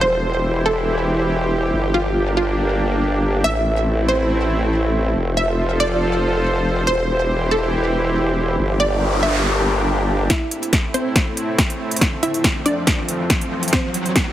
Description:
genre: heavy wobble dubstep.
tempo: 140 BPM.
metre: 4/4.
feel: swing 53% on 16ths, half-time.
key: A phrygian.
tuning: A4 = 440 Hz.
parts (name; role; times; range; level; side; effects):
wide unison pluck; melody; 0.0-14.3 s; C4 to E5; -22 LUFS; right 1 dB; digital delay.
supersaw pad; sustained chords; 0.0-14.3 s; E2 to C5; -22 LUFS; right 1 dB; sidechain pumping.
formant-sweep wobble bass; bass; 0.0-10.3 s; E1 to A1; -20 LUFS; equal; chorus, overdrive.
noise sweep and riser; sound effects; 8.7-14.3 s; none; -25 LUFS; left 1 dB; none.
big-room dance drum kit; drums; 10.3-14.2 s; hi-hat, snare drum; -20 LUFS; equal; none.
electronic kick drum; drums; 10.3-14.2 s; none; -21 LUFS; equal; none.
room: moderate lush hall reverb, RT60 2.2 s.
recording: heavily compressed radio sound, multiband compression.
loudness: -16 LUFS.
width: side -12 dB against mid.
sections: 0.0-10.3 A section; 10.3-14.3 B section.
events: noise sweep 8.7-10.3; build-up 10.3-14.3; drum fill 10.3-14.3; riser 11.5-14.3.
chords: 0.0 C/E; 1.7 Gm; 3.4 Am; 5.2 F; 6.9 C/E; 8.6 Gm; 10.3 Am; 12.0 F; 13.7 C/E.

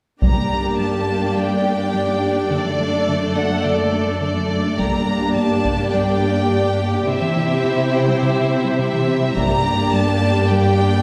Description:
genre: cinematic, hybrid orchestral and electronic film score.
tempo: 105 BPM.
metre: 4/4.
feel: straight.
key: G dorian.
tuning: A4 = 440 Hz.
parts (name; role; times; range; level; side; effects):
warm symphonic violin section; melody; 0.2-11.0 s; D5 to Bb5; -27 LUFS; equal; none.
warm studio violin section; second line; 0.2-11.0 s; G4 to D5; -27 LUFS; equal; none.
warm symphonic viola section; accompaniment; 0.2-11.0 s; A3 to E4; -28 LUFS; equal; none.
hollow soft pad; sustained chords; 0.2-11.0 s; A3 to D5; -25 LUFS; equal; chorus.
soft round pluck; arpeggios; 0.2-11.0 s; C3 to G4; -28 LUFS; equal; chorus.
dark symphonic cello section; bass; 0.2-11.0 s; F#2 to C3; -24 LUFS; equal; none.
taiko ensemble; drums; 0.2-1.3, 4.8-5.9, 9.4-10.5 s; none; -25 LUFS; equal; none.
room: wet recital hall reverb, RT60 1.3 s.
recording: recorded in a church or concert hall.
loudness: -18 LUFS.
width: mono.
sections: 0.2-11.0 A section.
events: none.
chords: 0.2 Gm; 2.5 D/F#; 4.8 Gm; 7.1 C; 9.4 Gm.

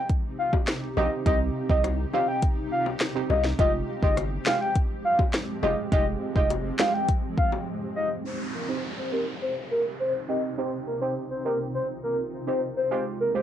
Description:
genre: dancehall.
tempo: 103 BPM.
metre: 4/4.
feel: straight.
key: C minor.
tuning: A4 = 440 Hz.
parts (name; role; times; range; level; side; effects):
soft octave-layered synth lead; melody; 0.0-13.4 s; Bb4 to G5; -26 LUFS; left 1 dB; chorus, phaser, low-pass filter, cassette tape, analog delay.
synth brass stab; accompaniment; 0.0-13.4 s; Ab3 to G4; -31 LUFS; right 9 dB; chorus, low-pass filter, cassette tape.
granular cloud pad; sustained chords; 0.0-13.4 s; F2 to G4; -34 LUFS; equal; built-in reverb, sidechain pumping, low-pass filter, cassette tape.
afro-pop drum kit; drums; 0.1-7.5 s; handclaps, hi-hat, kick drum, rim click, snare drum; -25 LUFS; equal; cassette tape.
bongos; percussion; 0.5-7.7 s; none; -34 LUFS; left 12 dB; none.
punchy sub bass; bass; 1.0-6.7 s; F1 to C2; -28 LUFS; equal; none.
downlifter; sound effects; 8.2-12.9 s; none; -39 LUFS; equal; none.
room: moderate studio reverb, RT60 0.6 s.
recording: home recording on cassette.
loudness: -24 LUFS.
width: side -10 dB against mid.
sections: 0.0-8.2 A section; 8.2-13.4 B section.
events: break 7.7-8.2; filter sweep 8.2-13.4.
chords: 0.0 Cm; 3.6 Fmadd9; 8.2 Cm; 12.9 Fmadd9.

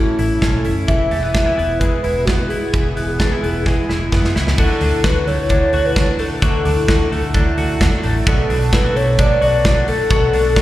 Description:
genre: jangly indie pop.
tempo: 130 BPM.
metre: 4/4.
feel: straight.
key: unclear.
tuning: A4 = 440 Hz.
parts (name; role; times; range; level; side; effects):
warbly nostalgic lead; melody; 0.0-10.6 s; E4 to E5; -19 LUFS; left 1 dB; chorus, plate reverb, slapback echo, analog delay.
fingerpicked twelve-string acoustic guitar; accompaniment; 0.0-10.6 s; A2 to E4; -24 LUFS; right 3 dB; plate reverb, slapback echo.
twelve-string electric guitar; arpeggios; 0.0-10.6 s; A2 to F#4; -23 LUFS; left 3 dB; spring reverb, plate reverb, slapback echo.
vintage muted fingered electric bass; bass; 0.2-10.6 s; E1 to E2; -20 LUFS; equal; none.
modern studio drum kit; drums; 0.2-10.6 s; crash cymbal, hi-hat, kick drum, snare drum; -19 LUFS; equal; none.
room: light reverb.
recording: live gig heard through the venue's PA, recital hall reverb.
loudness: -14 LUFS.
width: side -15 dB against mid.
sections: 0.0-4.6 A section; 4.6-10.6 B section.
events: drum fill 3.7-4.6.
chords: 0.0 A; 0.9 E; 4.6 Dadd9; 8.3 Bm7.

